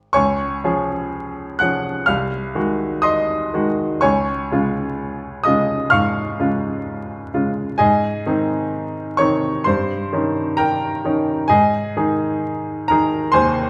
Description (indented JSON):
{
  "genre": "classical, romantic nocturne for solo piano",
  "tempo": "64 BPM",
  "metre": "4/4",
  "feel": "rubato",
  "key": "Db major",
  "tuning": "A4 = 440 Hz",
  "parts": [
    { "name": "clear baby grand piano", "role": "solo", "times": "0.0-13.7 s", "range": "C2 to Gb6", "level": "-20 LUFS", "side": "equal", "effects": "none" }
  ],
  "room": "moderate recital hall reverb, RT60 1.4 s",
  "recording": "vinyl crackle",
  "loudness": "-20 LUFS",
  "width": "mono",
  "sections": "0.1-13.7 A section",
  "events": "none",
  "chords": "0.1 Db; 2.1 Ab7/C; 4.0 Db; 7.8 Ab; 9.7 Eb7/G; 11.5 Ab"
}